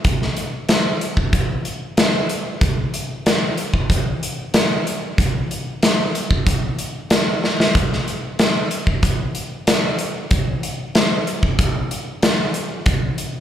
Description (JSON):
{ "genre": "rock", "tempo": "94 BPM", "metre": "4/4", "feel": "straight", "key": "none", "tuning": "none", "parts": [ { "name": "big rock drum kit", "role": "drums", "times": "0.0-13.3 s", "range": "hi-hat, kick drum, snare drum", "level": "-17 LUFS", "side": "equal", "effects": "none" } ], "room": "light reverb", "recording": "live gig heard through the venue's PA, club reverb", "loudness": "-17 LUFS", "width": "side -10 dB against mid", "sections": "0.0-13.4 A section", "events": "drum fill 7.4-7.7", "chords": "none", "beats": "| 0.05 0.69 1.33 1.97 | 2.61 3.25 3.89 4.54 | 5.18 5.82 6.46 7.10 | 7.74 8.38 9.02 9.66 | 10.30 10.94 11.58 12.22 | 12.86" }